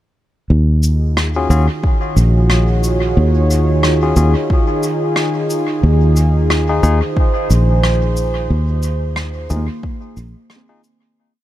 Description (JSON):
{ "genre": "ambient dub", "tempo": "90 BPM", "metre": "4/4", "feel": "swing 58% on 16ths", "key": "Eb dorian", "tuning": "A4 = 435 Hz", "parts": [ { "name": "warm analog pad", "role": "sustained chords", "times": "0.5-11.2 s", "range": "Eb3 to Db5", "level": "-19 LUFS", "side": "right 1 dB", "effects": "chorus" }, { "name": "fingered electric bass", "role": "bass", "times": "0.5-10.3 s", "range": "Bb1 to Eb2", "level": "-13 LUFS", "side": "equal", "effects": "none" }, { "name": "cabasa and rim click", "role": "drums", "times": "0.8-11.0 s", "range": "none", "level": "-25 LUFS", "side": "left 1 dB", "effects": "dub echo" }, { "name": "barky tine electric piano", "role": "stabs", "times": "1.4-10.8 s", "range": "Db4 to Ab4", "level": "-24 LUFS", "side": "left 4 dB", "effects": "dub echo" }, { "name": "electronic kick drum", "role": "drums", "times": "1.8-10.0 s", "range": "none", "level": "-16 LUFS", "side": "equal", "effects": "none" }, { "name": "kalimba", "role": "arpeggios", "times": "9.6-11.4 s", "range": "Bb3 to C4", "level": "-31 LUFS", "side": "right 1 dB", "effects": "none" } ], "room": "small room ambience", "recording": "none", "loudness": "-13 LUFS", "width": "side -13 dB against mid", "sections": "0.5-11.2 groove", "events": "fade-out 7.6-11.2", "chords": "0.5 Ebm11; 5.8 Fm7", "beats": "| 0.50 1.17 1.83 2.50 | 3.17 3.83 4.50 5.17 | 5.83 6.50 7.17 7.83 | 8.50 9.17 9.83 10.50" }